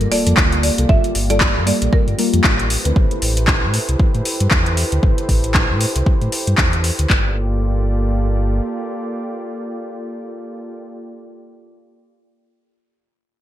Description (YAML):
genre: deep house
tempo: 116 BPM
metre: 4/4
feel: swing 58% on 16ths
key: G dorian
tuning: A4 = 440 Hz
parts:
  - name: buzzing marimba with medium hard mallets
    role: melody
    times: 0.0-2.7 s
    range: Bb4 to E5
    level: -24 LUFS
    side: equal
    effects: ping-pong delay
  - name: warm analog pad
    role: sustained chords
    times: 0.0-11.2 s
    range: Bb3 to D5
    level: -26 LUFS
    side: right 1 dB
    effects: chorus, sidechain pumping
  - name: mellow FM electric piano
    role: stabs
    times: 0.0-2.9 s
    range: G3 to B4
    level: -22 LUFS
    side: left 1 dB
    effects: chorus, phaser, cassette tape, sidechain pumping, digital delay
  - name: sub bass with octave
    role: bass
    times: 0.0-8.6 s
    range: G1 to A2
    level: -19 LUFS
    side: equal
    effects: sidechain pumping
  - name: deep house drum kit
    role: drums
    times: 0.0-7.1 s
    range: handclaps, hi-hat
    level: -20 LUFS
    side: left 1 dB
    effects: overdrive, gated reverb
  - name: sub drop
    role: sound effects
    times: 0.1-0.9 s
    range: none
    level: -37 LUFS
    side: equal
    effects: none
  - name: deep house drum kit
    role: drums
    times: 0.4-7.2 s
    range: handclaps, kick drum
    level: -16 LUFS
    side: equal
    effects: overdrive
room: light reverb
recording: bright 1980s-style digital production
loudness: -15 LUFS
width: side -12 dB against mid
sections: 0.0-7.1 A section; 7.1-11.2 B section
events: impact 0.0-0.9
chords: 0.0 Gm9; 2.7 Am9; 7.1 Gm9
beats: 0.37 | 0.89 1.41 1.93 2.44 | 2.96 3.48 4.00 4.51 | 5.03 5.55 6.06 6.58 | 7.10 7.62 8.13 8.65 | 9.17 9.69 10.20 10.72